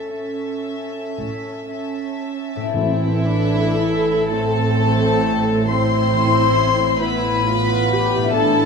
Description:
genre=classical, slow romantic movement for symphony orchestra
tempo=36-46 BPM (dotted quarters)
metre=12/8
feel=rubato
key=A minor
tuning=A4 = 440 Hz
part: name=warm chamber violin section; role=melody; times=0.0-8.7 s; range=E5 to C6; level=-24 LUFS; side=left 6 dB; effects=none
part: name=clear clarinet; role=second line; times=0.0-2.2 s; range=A4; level=-30 LUFS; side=equal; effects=none
part: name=warm studio violin section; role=second line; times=0.0-8.7 s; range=E4 to E5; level=-25 LUFS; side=left 5 dB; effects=none
part: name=dark symphonic viola section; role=accompaniment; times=0.0-8.7 s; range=C4 to A4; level=-23 LUFS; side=right 3 dB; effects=none
part: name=concert harp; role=arpeggios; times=0.0-8.7 s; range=A2 to A4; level=-25 LUFS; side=left 7 dB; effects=none
part: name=dark chamber cello section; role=bass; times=0.0-8.7 s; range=A2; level=-25 LUFS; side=right 4 dB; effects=none
part: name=warm chamber double bass section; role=bass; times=0.0-8.7 s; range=A1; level=-24 LUFS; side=right 4 dB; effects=none
part: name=warm French horn section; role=sustained chords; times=2.7-8.7 s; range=E3 to C4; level=-25 LUFS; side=equal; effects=none
part: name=timpani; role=percussion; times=2.7-4.3 s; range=A2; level=-26 LUFS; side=equal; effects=none
room=moderate scoring stage reverb, RT60 1.7 s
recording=none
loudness=-16 LUFS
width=side -5 dB against mid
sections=0.0-2.7 A section; 2.7-8.7 B section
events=none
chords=0.0 A; 2.7 Am

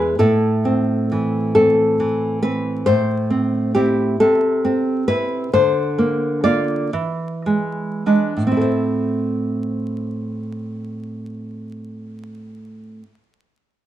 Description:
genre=romantic piece for solo classical guitar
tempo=32-46 BPM (dotted quarters)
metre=6/8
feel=rubato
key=A minor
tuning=A4 = 439 Hz
part: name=nylon-string guitar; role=solo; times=0.0-13.1 s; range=E2 to D5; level=-17 LUFS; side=equal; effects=none
room=moderate stone room reverb, RT60 0.9 s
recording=band playing live in one room, vinyl crackle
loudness=-17 LUFS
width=side -12 dB against mid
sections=0.0-2.8 A section; 2.8-8.6 B section; 8.6-11.7 C section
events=slowing down 1.5-8.6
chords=0.2 Am; 4.2 Am/C; 5.5 Bb/D; 6.9 E7; 8.6 Am

